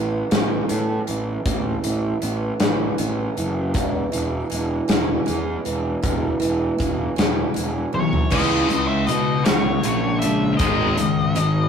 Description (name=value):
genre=quiet-loud alternative rock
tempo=52 BPM (dotted quarters)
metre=6/8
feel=straight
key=unclear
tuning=A4 = 438 Hz
part: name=picked steel-string acoustic guitar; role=arpeggios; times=0.0-11.7 s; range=E2 to C#4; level=-26 LUFS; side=right 4 dB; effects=none
part: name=fuzz fingered electric bass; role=bass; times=0.0-11.7 s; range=E1 to B2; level=-24 LUFS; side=equal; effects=overdrive
part: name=big rock drum kit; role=drums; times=0.3-11.5 s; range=crash cymbal, hi-hat, kick drum, snare drum, toms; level=-23 LUFS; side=left 1 dB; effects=none
part: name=octave-fuzz lead guitar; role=melody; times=7.9-11.7 s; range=C#5 to E5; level=-25 LUFS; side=left 5 dB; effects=distortion
part: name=high-gain distorted guitar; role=riff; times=8.3-11.7 s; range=G#2 to C#4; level=-22 LUFS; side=left 1 dB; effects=distortion
room=light reverb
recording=rough rehearsal-room recording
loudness=-19 LUFS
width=side -7 dB against mid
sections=0.0-8.3 A section; 8.3-11.7 B section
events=drum fill 7.9-8.3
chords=0.0 Aadd9; 3.7 E6; 8.3 C#m7; 10.6 G#5